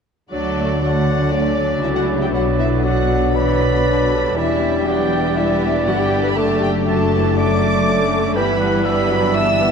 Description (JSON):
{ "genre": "quick classical-period movement for symphony orchestra", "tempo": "119 BPM", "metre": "4/4", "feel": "straight", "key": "D major", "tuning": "A4 = 440 Hz", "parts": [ { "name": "rich chamber violin section", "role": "melody", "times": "0.3-9.7 s", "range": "D5 to E6", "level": "-25 LUFS", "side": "left 2 dB", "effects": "none" }, { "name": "dark clarinet", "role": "second line", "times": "0.3-9.7 s", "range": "D4 to E5", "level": "-23 LUFS", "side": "equal", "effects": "none" }, { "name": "rich chamber violin section", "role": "second line", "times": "0.3-9.7 s", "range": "A3 to G4", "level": "-26 LUFS", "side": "left 2 dB", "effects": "none" }, { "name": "warm oboe", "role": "second line", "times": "0.3-9.7 s", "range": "D5 to G5", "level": "-26 LUFS", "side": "right 2 dB", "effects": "none" }, { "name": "mellow bassoon", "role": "accompaniment", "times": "0.3-9.7 s", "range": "E3 to A3", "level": "-24 LUFS", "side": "right 2 dB", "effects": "none" }, { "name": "rich chamber viola section", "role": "accompaniment", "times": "0.3-9.7 s", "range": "D3 to B3", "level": "-24 LUFS", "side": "right 1 dB", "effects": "none" }, { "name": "mellow French horn section", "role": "sustained chords", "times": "0.3-9.7 s", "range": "F#3 to E4", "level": "-23 LUFS", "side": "left 8 dB", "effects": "none" }, { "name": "dark chamber cello section", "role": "bass", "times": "0.3-9.7 s", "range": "E2 to D3", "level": "-24 LUFS", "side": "right 2 dB", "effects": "none" }, { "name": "rich chamber double bass section", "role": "bass", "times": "0.3-9.7 s", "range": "E1 to D2", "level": "-24 LUFS", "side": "right 3 dB", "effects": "none" } ], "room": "wet scoring stage reverb, RT60 1.8 s", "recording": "dark, warm production", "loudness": "-15 LUFS", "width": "side -6 dB against mid", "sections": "0.3-9.7 A section", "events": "none", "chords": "0.3 D; 2.3 Bm; 4.4 Em7; 6.4 D/F#; 8.4 Em/G" }